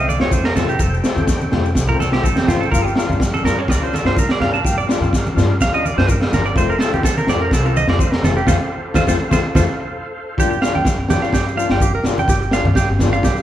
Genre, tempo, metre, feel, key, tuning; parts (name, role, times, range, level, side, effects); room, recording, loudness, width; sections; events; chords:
highlife guitar band; 125 BPM; 4/4; straight; G minor; A4 = 436 Hz
clean electric guitar; accompaniment; 0.0-13.3 s; F3 to F4; -24 LUFS; left 6 dB
bright tonewheel organ; sustained chords; 0.0-10.4 s; G4 to G5; -29 LUFS; equal; slow rotary speaker, chorus vibrato
clean electric guitar; arpeggios; 0.0-13.4 s; C4 to A5; -21 LUFS; right 3 dB; spring reverb, tape echo
upright bass; bass; 0.0-13.4 s; F1 to G2; -22 LUFS; equal
maracas; percussion; 0.0-13.4 s; -33 LUFS; left 6 dB
congas; percussion; 0.1-13.1 s; -24 LUFS; right 1 dB
crunchy breakbeat drum kit; drums; 0.2-13.4 s; kick drum, snare drum; -19 LUFS; equal
moderate large studio reverb, RT60 1.0 s; band playing live in one room; -14 LUFS; side -12 dB against mid
0.0-10.4 A section; 10.4-13.4 B section
clean electric guitar solo 0.0-10.4; band accent 8.5-10.4
0.0 F; 2.7 Gm7; 6.6 F; 10.4 Gm7